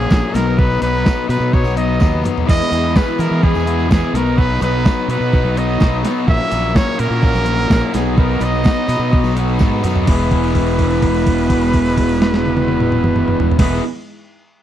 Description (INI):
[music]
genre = indie rock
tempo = 126 BPM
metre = 4/4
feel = straight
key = E lydian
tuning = A4 = 440 Hz
[part]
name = bright trumpet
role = melody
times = 0.0-13.8 s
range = G#4 to E5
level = -22 LUFS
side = right 2 dB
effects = slapback echo
[part]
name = string machine, full ensemble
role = sustained chords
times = 0.0-13.8 s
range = G#3 to E6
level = -30 LUFS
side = right 1 dB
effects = none
[part]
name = fuzz guitar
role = riff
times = 0.0-13.8 s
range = A#2 to G#4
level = -20 LUFS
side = left 9 dB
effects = distortion
[part]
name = fuzz fingered electric bass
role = bass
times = 0.0-13.8 s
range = E1 to E3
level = -19 LUFS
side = right 1 dB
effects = overdrive
[part]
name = crisp 8-bit digital drum machine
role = drums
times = 0.1-13.7 s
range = crash cymbal, hi-hat, kick drum, snare drum, toms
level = -16 LUFS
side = right 1 dB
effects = overdrive
[part]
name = tambourine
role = percussion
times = 0.1-10.3 s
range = none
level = -44 LUFS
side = right 6 dB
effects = none
[part]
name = cranked stack guitar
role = riff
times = 2.5-13.8 s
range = E2 to G#4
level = -23 LUFS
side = right 12 dB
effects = overdrive, analog chorus, slapback echo
[sound]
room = digital ambience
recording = dry, close 1970s-style studio recording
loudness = -13 LUFS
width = side -11 dB against mid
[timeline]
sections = 0.0-10.1 A section; 10.1-13.9 B section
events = drum fill 2.0-2.5, 9.6-10.1; held note 10.1-13.6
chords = 0.3 Bmaj7; 2.5 Emaj7; 4.1 Bmaj7; 6.3 F#7/A#; 7.9 Bmaj7; 10.1 Emaj7